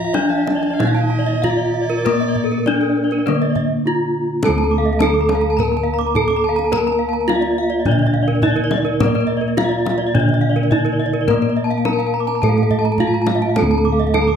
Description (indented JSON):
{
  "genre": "Balinese gamelan",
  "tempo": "105 BPM",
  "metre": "4/4",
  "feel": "straight",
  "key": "D pelog",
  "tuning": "A4 = 440 Hz",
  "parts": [
    { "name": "gamelan-type bronze metallophone", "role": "melody", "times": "0.0-14.4 s", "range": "Bb3 to Bb4", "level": "-19 LUFS", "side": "equal", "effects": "slapback echo" },
    { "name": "rich erhu", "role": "second line", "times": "0.0-3.2 s", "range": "D5 to Bb5", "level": "-31 LUFS", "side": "right 5 dB", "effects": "none" },
    { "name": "gamelan-type bronze metallophone", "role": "accompaniment", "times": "0.0-14.4 s", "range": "D3 to Bb3", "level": "-25 LUFS", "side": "right 5 dB", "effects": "none" },
    { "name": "gamelan-type bronze metallophone", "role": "arpeggios", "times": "0.0-14.3 s", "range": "A4 to Bb5", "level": "-25 LUFS", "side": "left 6 dB", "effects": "none" },
    { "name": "gamelan-type bronze metallophone", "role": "arpeggios", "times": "0.0-14.4 s", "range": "Bb4 to D6", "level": "-25 LUFS", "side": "right 5 dB", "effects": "none" },
    { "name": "gamelan-type bossed gongs", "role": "bass", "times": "0.0-14.4 s", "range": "D2 to Bb4", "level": "-21 LUFS", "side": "equal", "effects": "none" },
    { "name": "kendang", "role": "percussion", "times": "0.1-14.4 s", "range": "none", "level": "-25 LUFS", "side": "left 2 dB", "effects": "none" }
  ],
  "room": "light reverb",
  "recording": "close, detailed microphones",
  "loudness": "-15 LUFS",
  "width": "side -7 dB against mid",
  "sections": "0.0-4.4 A section; 4.4-14.4 B section",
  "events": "break 3.6-4.4",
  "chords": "none"
}